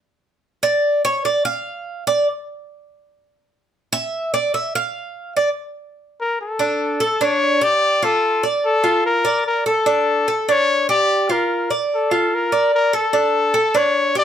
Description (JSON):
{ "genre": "latin", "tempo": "146 BPM", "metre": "4/4", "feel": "straight", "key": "D minor, D harmonic minor from 6.6 s", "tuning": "A4 = 440 Hz", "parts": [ { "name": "Cuban tres", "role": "arpeggios", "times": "0.6-14.2 s", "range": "D4 to F5", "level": "-19 LUFS", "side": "right 2 dB", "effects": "none" }, { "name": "warm trumpet", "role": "melody", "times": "6.2-14.2 s", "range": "A4 to D5", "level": "-18 LUFS", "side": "left 2 dB", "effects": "none" } ], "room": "light reverb", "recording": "none", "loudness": "-16 LUFS", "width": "side -9 dB against mid", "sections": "0.0-6.6 A section; 6.6-14.2 B section", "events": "Cuban tres solo 0.0-6.6", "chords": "0.0 N.C.; 6.6 D5; 7.4 G5; 8.2 F6; 9.0 Bbmaj7/F; 9.9 D5; 10.7 G5; 11.5 F6; 12.3 Bbmaj7/F; 13.1 D5" }